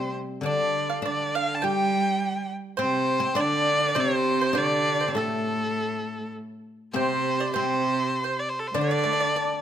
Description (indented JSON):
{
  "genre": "chinese traditional, Chinese chamber ensemble",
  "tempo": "101 BPM",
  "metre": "4/4",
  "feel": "rubato",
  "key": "unclear",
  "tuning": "A4 = 440 Hz",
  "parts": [
    { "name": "clear erhu", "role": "melody", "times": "0.0-9.6 s", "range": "A4 to A5", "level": "-26 LUFS", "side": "equal", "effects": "none" },
    { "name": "clear cello", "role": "second line", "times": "0.0-9.6 s", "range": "A2 to G3", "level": "-30 LUFS", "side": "right 6 dB", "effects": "none" },
    { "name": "oud", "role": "second line", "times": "0.0-9.6 s", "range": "A3 to G4", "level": "-32 LUFS", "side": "left 6 dB", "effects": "none" },
    { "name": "pipa", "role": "second line", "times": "0.0-9.6 s", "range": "A4 to G5", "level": "-32 LUFS", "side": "right 6 dB", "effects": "none" },
    { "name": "guzheng", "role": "accompaniment", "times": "0.0-9.6 s", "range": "C3 to D4", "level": "-32 LUFS", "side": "left 4 dB", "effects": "none" }
  ],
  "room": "light reverb",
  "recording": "close, detailed microphones",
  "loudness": "-23 LUFS",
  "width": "side -9 dB against mid",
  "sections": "0.0-9.6 A section",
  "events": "none",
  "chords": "none"
}